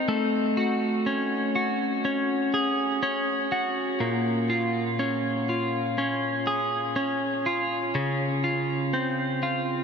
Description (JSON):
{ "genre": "pop", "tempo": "61 BPM", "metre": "4/4", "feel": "straight", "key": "unclear", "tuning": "A4 = 438 Hz", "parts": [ { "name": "twelve-string electric guitar", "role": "solo", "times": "0.0-9.8 s", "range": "Bb2 to Bb4", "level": "-24 LUFS", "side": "equal", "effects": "analog delay" } ], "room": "wet huge ambient reverb, RT60 7.4 s", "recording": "dreamy mix soaked in reverb", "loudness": "-24 LUFS", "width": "side -6 dB against mid", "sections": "0.0-9.8 A section", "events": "none", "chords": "0.1 Gbmadd9/A; 4.0 Bbm7; 8.0 Dbmaj7" }